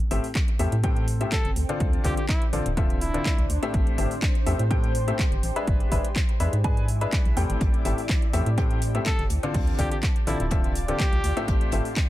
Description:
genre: piano house.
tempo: 124 BPM.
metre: 4/4.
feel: swing 53% on 16ths.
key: A minor.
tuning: A4 = 440 Hz.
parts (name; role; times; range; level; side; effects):
organ-like FM bass; bass; 0.0-11.8 s; D1 to A2; -26 LUFS; equal; sidechain pumping.
house drum kit; drums; 0.0-12.1 s; handclaps, hi-hat; -33 LUFS; equal; overdrive.
granular cloud pad; texture; 1.1-12.1 s; C4 to C6; -35 LUFS; equal; built-in reverb, sidechain pumping.
clear grand piano; riff; 0.1-11.9 s; A2 to G#5; -30 LUFS; left 3 dB; sidechain pumping, digital delay.
electronic kick drum; drums; 0.4-12.1 s; none; -24 LUFS; equal; overdrive.
breathy trumpet; melody; 1.3-3.5, 9.1-11.5 s; E4 to A4; -33 LUFS; equal; digital delay.
warm soul drum kit; drums; 7.6-12.1 s; hi-hat, snare drum; -44 LUFS; left 3 dB; none.
room: little or no reverb.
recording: none.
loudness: -22 LUFS.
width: side -15 dB against mid.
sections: 0.0-12.1 A section.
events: none.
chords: 0.0 Am7; 1.6 Dm7; 3.7 Am7; 5.7 E7/G#; 7.6 Am7; 9.3 Dm7; 11.5 Am7.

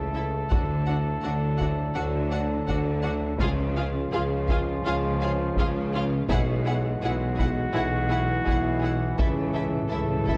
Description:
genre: cinematic, epic orchestral film score.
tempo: 83 BPM.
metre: 4/4.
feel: straight.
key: unclear.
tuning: A4 = 439 Hz.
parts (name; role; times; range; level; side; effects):
clear trombone section; sustained chords; 0.0-10.4 s; A2 to F#3; -38 LUFS; equal; none.
dark French horn section; sustained chords; 0.0-10.4 s; G#3 to E4; -38 LUFS; equal; none.
warm trumpet; stabs; 0.0-10.4 s; E#4 to A4; -36 LUFS; equal; none.
clear tuba; bass; 0.0-10.4 s; B1 to D2; -35 LUFS; equal; none.
rich symphonic cello section; bass; 0.0-10.4 s; B2 to D3; -34 LUFS; equal; none.
rich symphonic double bass section; bass; 0.0-10.4 s; B1 to D2; -32 LUFS; equal; none.
warm symphonic violin section; melody; 0.1-10.4 s; E5 to F#5; -40 LUFS; equal; none.
rich symphonic viola section; accompaniment; 0.1-10.4 s; D4 to E#4; -38 LUFS; equal; none.
rich symphonic violin section; second line; 0.2-10.3 s; F#4 to A4; -43 LUFS; equal; none.
taiko ensemble; drums; 0.5-10.4 s; none; -30 LUFS; equal; none.
timpani; percussion; 9.2-10.4 s; A2; -35 LUFS; equal; none.
cymbal swell; sound effects; 9.2-10.4 s; none; barely audible; none; none.
room: moderate scoring stage reverb, RT60 1.7 s.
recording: dark, warm production.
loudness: -26 LUFS.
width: mono.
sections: 0.0-10.4 A section.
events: timpani fill 9.2-10.4.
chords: 0.0 A/C#; 0.5 D; 3.4 C#; 6.3 Eadd9/B; 9.2 A/C#.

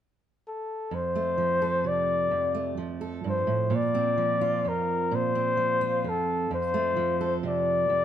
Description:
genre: folk.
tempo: 43 BPM (dotted quarters).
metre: 6/8.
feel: straight.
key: F major.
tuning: A4 = 439 Hz.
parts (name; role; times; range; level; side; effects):
mellow flugelhorn; melody; 0.5-8.0 s; A4 to D5; -25 LUFS; left 3 dB; none.
fingerpicked steel-string acoustic guitar; accompaniment; 0.9-8.0 s; F2 to A4; -29 LUFS; right 6 dB; none.
room: moderate large studio reverb, RT60 1.3 s.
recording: minimal, uncompressed stereo recording.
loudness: -24 LUFS.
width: side -10 dB against mid.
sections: 0.9-8.0 A section.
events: none.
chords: 0.0 N.C.; 0.9 F; 3.7 Bbadd9; 6.5 F.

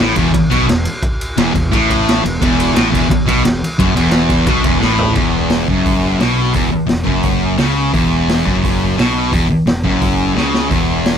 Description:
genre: garage rock duo or trio.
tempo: 173 BPM.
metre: 4/4.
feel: straight.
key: unclear.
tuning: A4 = 440 Hz.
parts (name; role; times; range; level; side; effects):
thick fuzz guitar; riff; 0.0-11.2 s; E2 to C#3; -14 LUFS; equal; distortion.
fuzz fingered electric bass; bass; 0.0-11.2 s; E1 to C#2; -21 LUFS; equal; overdrive.
raw garage drum kit; drums; 0.2-11.1 s; crash cymbal, hi-hat, kick drum, ride cymbal, snare drum, toms; -17 LUFS; equal; none.
room: light reverb.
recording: none.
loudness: -12 LUFS.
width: side -8 dB against mid.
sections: 0.0-5.2 A section; 5.2-11.2 B section.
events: drum fill 4.8-5.2, 10.4-10.7.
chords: 0.0 E5.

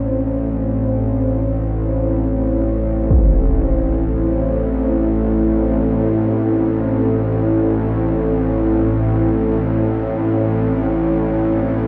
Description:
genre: dark ambient drone.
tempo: free time.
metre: none.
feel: none.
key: A minor.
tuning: A4 = 440 Hz.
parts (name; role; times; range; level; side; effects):
dark analog pad; sustained chords; 0.0-11.9 s; C4 to C5; -21 LUFS; equal; chorus.
bowed-like drone; drone; 0.0-11.9 s; A1 to A2; -21 LUFS; equal; built-in reverb.
impact; percussion; 3.1-3.3 s; none; -21 LUFS; equal; low-pass filter on sfx.
room: moderate huge ambient reverb, RT60 9.0 s.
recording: dark, warm production.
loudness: -18 LUFS.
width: mono.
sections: 0.0-11.9 A section.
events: none.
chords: 0.0 Am.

